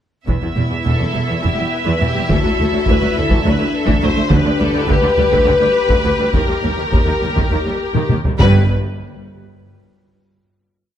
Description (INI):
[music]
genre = cinematic, epic orchestral film score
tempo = 208 BPM (eighths)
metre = 7/8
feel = straight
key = G major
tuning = A4 = 440 Hz
[part]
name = rich symphonic violin section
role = melody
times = 0.3-8.7 s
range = Bb4 to E5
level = -24 LUFS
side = left 1 dB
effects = none
[part]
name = rich symphonic viola section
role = accompaniment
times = 0.3-8.7 s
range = D3 to G4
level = -23 LUFS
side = equal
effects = none
[part]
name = mellow French horn section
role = sustained chords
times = 0.3-8.6 s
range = B3 to B4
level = -20 LUFS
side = left 4 dB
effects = none
[part]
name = rich symphonic cello section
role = bass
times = 0.3-8.7 s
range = D2 to G2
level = -21 LUFS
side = right 1 dB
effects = none
[part]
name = rich symphonic double bass section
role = bass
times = 0.3-8.7 s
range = E1 to Eb2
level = -20 LUFS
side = right 2 dB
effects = none
[part]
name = taiko ensemble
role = drums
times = 0.3-9.5 s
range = none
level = -18 LUFS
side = equal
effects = none
[part]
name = clear symphonic violin section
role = second line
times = 0.9-8.7 s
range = G4 to C5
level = -24 LUFS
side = left 2 dB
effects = none
[part]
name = timpani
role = percussion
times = 2.3-5.1, 8.4-8.7 s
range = G2 to D3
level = -23 LUFS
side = equal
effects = none
[sound]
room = light reverb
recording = close, detailed microphones, lossy compression artefacts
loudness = -13 LUFS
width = side -10 dB against mid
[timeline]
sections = 0.3-8.4 theme; 8.4-10.4 final chord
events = drum fill 8.0-8.4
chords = 0.3 Em; 2.3 Dadd9; 4.3 G/D; 6.3 Eb; 8.4 G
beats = | 0.28 0.57 0.87 1.16 1.44 1.73 2.02 | 2.32 2.60 2.89 3.17 3.46 3.75 4.03 | 4.32 4.61 4.90 5.19 5.47 5.76 6.05 | 6.34 6.64 6.93 7.23 7.52 7.81 8.10 | 8.40 8.69 8.97 9.26